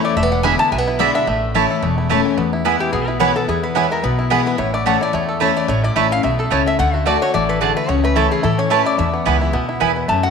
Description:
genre	bluegrass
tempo	218 BPM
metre	4/4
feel	swing 55% on 8ths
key	unclear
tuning	A4 = 439 Hz
part	bluegrass banjo	melody	0.0-10.3 s	A3 to A4	-24 LUFS	right 4 dB	none
part	lap resonator guitar	melody	0.0-10.3 s	E4 to A5	-21 LUFS	left 2 dB	none
part	picked steel-string acoustic guitar	accompaniment	0.0-10.3 s	E2 to F#4	-20 LUFS	left 9 dB	none
part	upright bass	bass	0.2-10.3 s	E1 to A2	-23 LUFS	right 1 dB	none
part	mandolin	stabs	0.4-9.9 s	A3 to B5	-20 LUFS	right 10 dB	tape echo
room	wet echo chamber reverb, RT60 1.9 s, small room ambience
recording	1960s-style stereo with parts hard left and right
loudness	-15 LUFS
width	side -6 dB against mid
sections	0.0-2.4 A section; 2.4-10.3 B section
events	resonator guitar played with a steel bar solo 2.4-10.3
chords	0.2 E7; 1.3 A; 2.4 E; 4.6 A; 6.8 D; 7.9 A/C#; 9.0 E

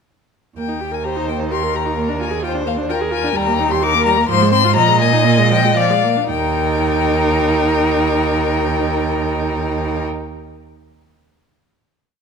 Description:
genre	quick classical-period movement for string quartet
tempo	111-130 BPM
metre	3/4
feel	rubato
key	Eb major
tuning	A4 = 441 Hz
part	warm violin	melody	0.6-10.0 s	F5 to D6	-20 LUFS	left 10 dB	none
part	rich viola	accompaniment	0.6-10.0 s	F3 to Bb4	-21 LUFS	right 3 dB	none
part	rich cello	bass	0.6-10.0 s	Eb2 to Bb2	-20 LUFS	right 6 dB	none
part	rich violin	second line	1.0-10.0 s	G4 to Eb5	-21 LUFS	left 5 dB	none
room	moderate scoring stage reverb, RT60 1.7 s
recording	none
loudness	-14 LUFS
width	side -6 dB against mid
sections	0.6-6.3 A section; 6.3-9.3 final chord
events	slowing down 2.7-6.3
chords	0.6 Eb; 2.0 Bb7/Eb; 3.4 Eb; 4.3 Fm/Ab; 4.8 Bb7sus4; 5.8 Bb7; 6.3 Eb

